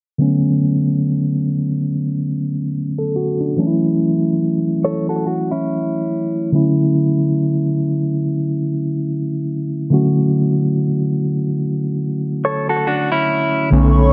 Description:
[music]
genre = R&B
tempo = 71 BPM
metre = 4/4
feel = swing 58% on 16ths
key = D major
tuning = A4 = 439 Hz
[part]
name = mellow tine electric piano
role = accompaniment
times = 0.2-14.1 s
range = D3 to A4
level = -19 LUFS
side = equal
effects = none
[part]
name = direct-recorded clean electric guitar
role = arpeggios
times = 4.8-6.5, 12.4-13.7 s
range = C#4 to C#5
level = -21 LUFS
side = equal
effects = none
[part]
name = hollow soft pad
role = sustained chords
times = 13.8-14.1 s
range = A4 to C#6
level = -20 LUFS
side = equal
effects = chorus
[part]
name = smooth synth bass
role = bass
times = 13.7-14.1 s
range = B1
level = -15 LUFS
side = equal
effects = none
[sound]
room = little or no reverb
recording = low-pass filter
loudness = -18 LUFS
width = mono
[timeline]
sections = 0.2-13.7 A section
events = filter sweep 0.2-13.7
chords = 0.2 Bm9; 3.6 F#m7; 6.5 Dmaj9

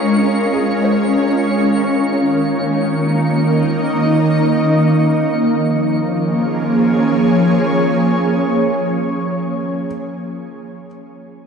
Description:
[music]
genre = ambient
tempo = free time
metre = none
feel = none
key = Bb minor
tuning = A4 = 440 Hz
[part]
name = ethereal airy pad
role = sustained chords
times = 0.0-10.3 s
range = Eb3 to F5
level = -14 LUFS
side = equal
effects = ensemble chorus, built-in reverb
[part]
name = felt-muted upright piano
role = arpeggios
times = 0.0-11.5 s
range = F4 to Db5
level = -29 LUFS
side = equal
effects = ping-pong delay
[part]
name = twinkling granular texture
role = texture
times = 0.0-5.5 s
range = Db4 to Db7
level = -25 LUFS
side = equal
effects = built-in reverb
[sound]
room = wet concert hall reverb, RT60 2.5 s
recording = dark, warm production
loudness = -14 LUFS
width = side -6 dB against mid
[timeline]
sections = 0.0-5.5 A section; 5.5-9.5 B section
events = fade-out on felt piano 0.0-5.5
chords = 0.0 Bbm7; 1.5 Eb5; 5.5 Bbm7

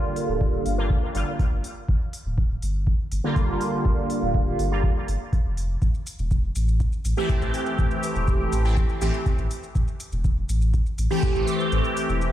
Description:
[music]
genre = dub techno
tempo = 122 BPM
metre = 4/4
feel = straight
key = G dorian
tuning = A4 = 440 Hz
[part]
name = resonant sweep polysynth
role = stabs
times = 0.0-12.3 s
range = D3 to G4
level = -25 LUFS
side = equal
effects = chorus, phaser, sidechain pumping, dub echo
[part]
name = electronic hi-hat and shaker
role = drums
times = 0.2-12.3 s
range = none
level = -40 LUFS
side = left 1 dB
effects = none
[part]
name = soft dub sub bass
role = bass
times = 0.3-12.3 s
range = D1 to A1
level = -25 LUFS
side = equal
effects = sidechain pumping
[part]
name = electronic kick drum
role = drums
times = 0.4-11.3 s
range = none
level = -24 LUFS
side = equal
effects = none
[sound]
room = digital ambience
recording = played on a big sound system in a bare room, large studio reverb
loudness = -21 LUFS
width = side -12 dB against mid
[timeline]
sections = 0.0-12.3 A section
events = kick drops out 11.7-12.3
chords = 0.0 Gm7; 5.8 Am7

